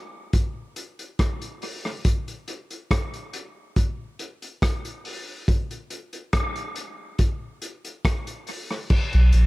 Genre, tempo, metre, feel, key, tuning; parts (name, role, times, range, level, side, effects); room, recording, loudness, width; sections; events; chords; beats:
dub reggae; 70 BPM; 4/4; straight; A4 = 439 Hz
vintage drum kit; drums; 0.3-9.5 s; crash cymbal, hi-hat, kick drum, rim click; -24 LUFS; equal
warm sub bass; bass; 9.1-9.5 s; A#1 to B1; -14 LUFS; equal
little or no reverb; -23 LUFS; side -21 dB against mid
0.0-8.9 A section
0.34 1.20 | 2.05 2.91 3.77 4.62 | 5.48 6.33 7.19 8.05 | 8.90